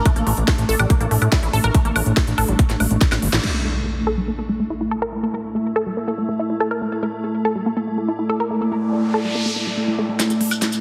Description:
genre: psychedelic trance.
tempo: 142 BPM.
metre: 4/4.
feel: straight.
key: unclear.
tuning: A4 = 441 Hz.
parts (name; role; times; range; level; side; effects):
swarming drone; sustained chords; 0.0-10.8 s; A3 to E4; -28 LUFS; equal; built-in reverb, sidechain pumping.
deep dark ambient pad; texture; 0.0-10.8 s; A3 to E6; -29 LUFS; equal; chorus, built-in reverb, sidechain pumping.
unison pluck; riff; 0.1-10.7 s; G3 to Bb4; -26 LUFS; equal; phaser, sidechain pumping, tape echo.
drum and bass drum kit; drums; 0.1-3.5, 10.2-10.8 s; crash cymbal, hi-hat, snare drum, woodblock; -26 LUFS; equal; studio ambience.
electronic kick drum; drums; 0.1-3.1 s; none; -18 LUFS; equal; studio ambience.
fat analog bass; bass; 0.2-3.4 s; G1 to A2; -22 LUFS; equal; none.
impact, noise sweep and riser; sound effects; 3.4-5.1, 8.8-10.8 s; none; -30 LUFS; equal; none.
shekere; percussion; 10.2-10.8 s; none; -31 LUFS; equal; none.
room: moderate lush hall reverb, RT60 2.1 s.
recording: heavily compressed radio sound.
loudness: -20 LUFS.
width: mono.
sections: 0.0-3.4 A section; 3.4-10.2 B section.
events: drum fill 3.0-3.4, 10.2-10.8; band accent 3.3; impact 3.4-5.1; filter sweep on synth drone 3.4-10.2; noise sweep 8.8-10.2; riser 10.2-10.8.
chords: 0.0 A5.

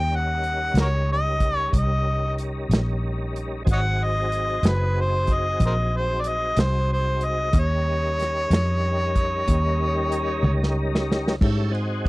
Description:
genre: slow blues.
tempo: 62 BPM (dotted quarters).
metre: 12/8.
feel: straight.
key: unclear.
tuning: A4 = 440 Hz.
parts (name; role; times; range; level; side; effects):
warm harmonica; melody; 0.0-10.8 s; Gb4 to G5; -25 LUFS; equal; overdrive.
tonewheel organ; sustained chords; 0.0-12.1 s; Gb3 to Bb4; -30 LUFS; equal; slow rotary speaker, chorus vibrato.
vintage muted fingered electric bass; bass; 0.0-12.1 s; Gb1 to Ab2; -24 LUFS; equal; none.
warm soul drum kit; drums; 0.4-12.1 s; crash cymbal, hi-hat, kick drum, ride cymbal, snare drum, toms; -23 LUFS; equal; none.
room: small room ambience.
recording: dry, close 1970s-style studio recording.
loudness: -20 LUFS.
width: side -21 dB against mid.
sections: 0.0-11.4 A section.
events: drum fill 10.4-11.4.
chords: 0.0 Eb7; 3.7 Ab7; 7.5 Eb7; 11.4 Ab7.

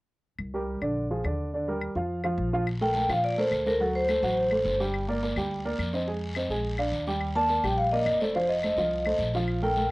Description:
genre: Afro-Cuban jazz.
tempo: 211 BPM.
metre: 4/4.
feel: straight.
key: Bb major.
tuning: A4 = 439 Hz.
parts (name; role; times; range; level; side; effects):
upright bass; bass; 0.4-9.8 s; F1 to Bb2; -32 LUFS; equal; none.
claves; percussion; 0.4-9.6 s; none; -37 LUFS; left 5 dB; none.
dark grand piano; accompaniment; 0.5-9.9 s; D3 to Ab5; -29 LUFS; right 1 dB; cassette tape.
guiro; percussion; 2.7-9.9 s; none; -40 LUFS; left 2 dB; none.
vibraphone with medium mallets; melody; 2.8-4.8, 7.4-9.9 s; A4 to A5; -25 LUFS; equal; none.
room: little or no reverb.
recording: home recording on cassette.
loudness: -25 LUFS.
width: side -21 dB against mid.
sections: 0.4-2.7 A section; 2.7-9.9 B section.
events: none.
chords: 0.4 C5; 1.0 Bb7; 1.5 Ebmaj7; 2.1 Bb5; 2.7 Bbmaj7; 3.8 D7; 4.9 Gm7; 6.1 Fm7; 6.6 Bb7; 7.2 Ebmaj7; 8.3 F7.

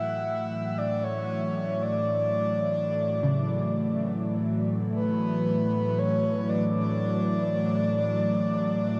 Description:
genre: ambient.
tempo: free time.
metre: none.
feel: none.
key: unclear.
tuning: A4 = 440 Hz.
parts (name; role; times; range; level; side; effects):
breathy flute-like synth lead; melody; 0.0-9.0 s; B4 to E5; -32 LUFS; equal; lush chorus, cassette tape, diffuse ambient delay.
airy breathy pad; sustained chords; 0.0-9.0 s; A2 to E5; -29 LUFS; equal; chorus.
soft round pluck; arpeggios; 0.0-7.8 s; C#3 to C#5; -34 LUFS; equal; lush chorus, diffuse ambient delay.
room: wet huge ambient reverb, RT60 7.8 s.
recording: worn, warbling old tape, cassette tape, warbly pitch drift.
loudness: -27 LUFS.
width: mono.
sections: 0.0-9.0 A section.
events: none.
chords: 0.0 Dadd9/A.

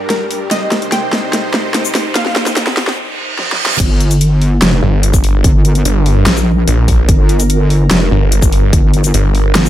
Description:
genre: heavy wobble dubstep.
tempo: 146 BPM.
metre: 4/4.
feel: half-time.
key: G minor.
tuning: A4 = 440 Hz.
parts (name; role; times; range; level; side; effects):
wide unison pluck; melody; 0.0-2.5 s; Bb4 to G5; -21 LUFS; equal; tape echo.
supersaw chords; sustained chords; 0.0-3.8 s; G2 to C5; -24 LUFS; right 1 dB; sidechain pumping.
riser and reverse cymbal; sound effects; 0.5-3.8 s; none; -21 LUFS; right 5 dB; none.
ethereal airy pad; texture; 0.0-9.7 s; D4 to G5; -23 LUFS; equal; ensemble chorus, built-in reverb, sidechain pumping.
dubstep drum kit; drums; 0.1-9.7 s; crash cymbal, hi-hat, shaker, snare drum; -16 LUFS; equal; studio reverb.
wobble bass; bass; 3.8-9.7 s; F1 to Bb1; -11 LUFS; equal; chorus, overdrive.
electronic kick drum; drums; 3.8-8.8 s; none; -12 LUFS; equal; studio reverb.
snarling distorted saw bass; bass; 4.8-9.5 s; G1 to Bb1; -11 LUFS; equal; distortion, overdrive.
room: little or no reverb.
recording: high-pass filter.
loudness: -10 LUFS.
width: side -12 dB against mid.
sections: 0.0-3.8 A section; 3.8-9.7 B section.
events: build-up 0.0-3.8; drum fill 0.0-3.0, 3.4-3.8; riser 0.5-3.0; filter sweep 0.0-3.8; break 3.0-3.8; reverse cymbal 3.0-3.8; drop 3.8-9.7.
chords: 0.0 Gm; 0.5 Cm; 3.8 Gm.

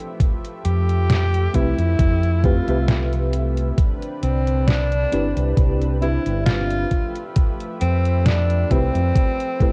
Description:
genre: vaporwave.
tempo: 67 BPM.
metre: 4/4.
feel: swing 54% on 16ths.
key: unclear.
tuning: A4 = 440 Hz.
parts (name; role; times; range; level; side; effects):
lush unison pad; sustained chords; 0.0-9.7 s; D3 to E5; -35 LUFS; equal; chorus.
detuned 8-bit digital drum machine; drums; 0.0-9.7 s; hi-hat, snare drum; -25 LUFS; equal; overdrive.
electronic kick drum; drums; 0.2-9.7 s; none; -21 LUFS; equal; none.
warm tenor saxophone; melody; 0.6-9.7 s; C4 to G4; -28 LUFS; equal; tape echo.
fingered electric bass; bass; 0.7-9.1 s; G1 to F2; -22 LUFS; equal; tube saturation.
mellow FM electric piano; accompaniment; 1.5-9.7 s; A3 to E5; -28 LUFS; equal; ensemble chorus, tape echo.
room: light reverb.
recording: worn, warbling old tape, cassette tape, warbly pitch drift, nothing above 10.7 kHz.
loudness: -20 LUFS.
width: mono.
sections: 0.0-9.7 A section.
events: none.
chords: 0.0 Fmaj9#11; 3.8 Cmaj9; 6.9 Fmaj9#11.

